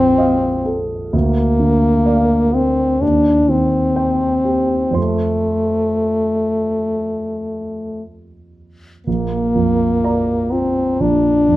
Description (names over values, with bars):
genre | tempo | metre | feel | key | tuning
classical, romantic duo for French horn and grand piano | 57-65 BPM | 4/4 | rubato | Bb major | A4 = 440 Hz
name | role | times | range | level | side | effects
warm French horn | melody | 0.0-11.6 s | A3 to D4 | -15 LUFS | left 1 dB | none
dark concert grand piano | accompaniment | 0.0-11.6 s | Bb1 to C6 | -20 LUFS | right 2 dB | none
room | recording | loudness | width
moderate large studio reverb, RT60 0.8 s | none | -14 LUFS | side -16 dB against mid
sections
0.0-11.6 A section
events
none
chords
0.0 F7/Bb; 1.1 Bb/D; 3.0 Cm/Eb; 5.0 F; 9.1 Bb